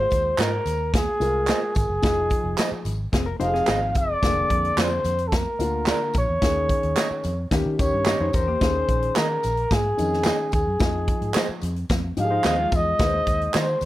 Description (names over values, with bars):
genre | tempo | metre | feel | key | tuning
uptempo 1960s-style soul | 110 BPM | 4/4 | straight | Ab major | A4 = 440 Hz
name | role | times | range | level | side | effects
breathy trumpet | melody | 0.0-13.9 s | Ab4 to F5 | -24 LUFS | equal | none
dark upright piano | accompaniment | 0.0-13.9 s | D3 to C5 | -30 LUFS | left 4 dB | none
vintage muted fingered electric bass | bass | 0.0-13.9 s | F1 to Eb3 | -28 LUFS | equal | none
natural country drum kit | drums | 0.1-13.9 s | hi-hat, kick drum, snare drum | -25 LUFS | equal | none
tambourine and handclaps | percussion | 0.1-13.9 s | none | -32 LUFS | right 5 dB | none
electric guitar through a small old amp | stabs | 0.4-13.7 s | F4 to Eb5 | -28 LUFS | right 4 dB | none
hollow-body jazz guitar | riff | 3.1-4.2, 8.2-8.7, 12.3-13.0 s | Ab3 to C5 | -30 LUFS | left 5 dB | none
room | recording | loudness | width
light reverb | none | -20 LUFS | side -15 dB against mid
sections
0.0-13.9 A section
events
none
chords
0.0 Ab6; 2.0 Fm7; 4.2 Bb7/F; 6.4 Eb7sus4; 7.5 Eb7; 8.6 Eb7sus4; 10.8 Fm7; 13.0 Ab/Eb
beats
0.39 0.94 1.49 | 2.03 2.58 3.13 3.68 | 4.22 4.77 5.32 5.87 | 6.42 6.97 7.51 8.06 | 8.61 9.16 9.71 10.26 | 10.80 11.35 11.90 12.45 | 13.00 13.54